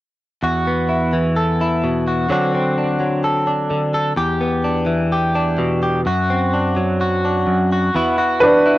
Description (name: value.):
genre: acoustic folk-pop ballad.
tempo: 64 BPM.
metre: 4/4.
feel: straight.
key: E minor.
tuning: A4 = 440 Hz.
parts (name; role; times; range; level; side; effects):
direct-recorded clean electric guitar; accompaniment; 0.4-8.8 s; E2 to A4; -16 LUFS; equal; wide subtle chorus, cassette tape.
bright upright piano; melody; 8.4-8.8 s; D4 to B4; -10 LUFS; right 1 dB; cassette tape.
room: moderate booth ambience, RT60 0.2 s.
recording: home recording on cassette.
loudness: -16 LUFS.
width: side -16 dB against mid.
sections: 0.4-7.9 A section.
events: none.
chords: 0.4 Esus2; 2.3 D7; 4.2 Em7; 6.1 D7/F#; 7.9 Esus2.